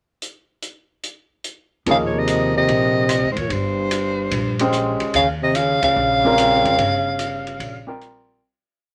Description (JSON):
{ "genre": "modal jazz", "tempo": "146 BPM", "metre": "4/4", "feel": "swing 67% on 8ths", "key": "Eb mixolydian", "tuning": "A4 = 439 Hz", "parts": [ { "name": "open jazz drum kit", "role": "drums", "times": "0.2-8.1 s", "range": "hi-hat, kick drum, ride cymbal, rim click", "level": "-32 LUFS", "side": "equal", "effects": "none" }, { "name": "breathy soprano saxophone", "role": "melody", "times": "1.9-8.0 s", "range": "C5 to F5", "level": "-22 LUFS", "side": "equal", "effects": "none" }, { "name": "mellow trombone", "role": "second line", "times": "1.9-8.0 s", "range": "G2 to Db3", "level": "-25 LUFS", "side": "equal", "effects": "none" }, { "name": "warm upright piano", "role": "accompaniment", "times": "1.9-8.4 s", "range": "F3 to C5", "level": "-24 LUFS", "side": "equal", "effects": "none" }, { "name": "upright bass", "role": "bass", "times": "1.9-8.4 s", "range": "G1 to Fb2", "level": "-30 LUFS", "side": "equal", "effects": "none" } ], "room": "moderate small room ambience, RT60 0.5 s", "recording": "none", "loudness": "-19 LUFS", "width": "mono", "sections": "0.2-1.9 pickup bar; 1.9-8.4 A section", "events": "band accent 5.8; fade-out 6.8-8.4", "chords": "0.2 N.C.; 1.9 Eb13" }